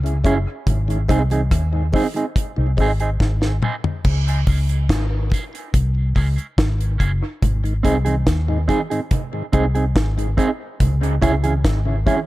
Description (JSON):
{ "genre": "dub reggae", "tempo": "71 BPM", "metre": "4/4", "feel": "straight", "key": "C# harmonic minor", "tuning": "A4 = 440 Hz", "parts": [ { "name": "mellow tonewheel organ", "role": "accompaniment", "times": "0.0-12.2 s", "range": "G#2 to E4", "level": "-28 LUFS", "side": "left 2 dB", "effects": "slow rotary speaker, high-pass filter, dub echo" }, { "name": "vintage muted fingered electric bass", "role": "bass", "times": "0.0-12.0 s", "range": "F#1 to D#2", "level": "-19 LUFS", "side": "equal", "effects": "none" }, { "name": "deep reggae drum kit", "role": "drums", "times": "0.1-12.3 s", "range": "crash cymbal, hi-hat, kick drum, rim click, snare drum, toms", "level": "-20 LUFS", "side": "equal", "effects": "none" }, { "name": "mellow electric guitar", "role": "accompaniment", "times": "0.3-12.2 s", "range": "B#3 to G#4", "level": "-24 LUFS", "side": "right 4 dB", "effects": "high-pass filter, dub echo" }, { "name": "congas", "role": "percussion", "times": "0.7-12.3 s", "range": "none", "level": "-30 LUFS", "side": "right 4 dB", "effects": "none" } ], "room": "small room reverb", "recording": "none", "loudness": "-17 LUFS", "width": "side -17 dB against mid", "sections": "0.0-4.0 A section; 4.0-12.3 A section", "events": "filter sweep 0.7-7.4; drum fill 3.2-4.0", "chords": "0.0 C#m; 0.7 G#; 4.0 C#m; 7.4 G#; 10.8 C#m" }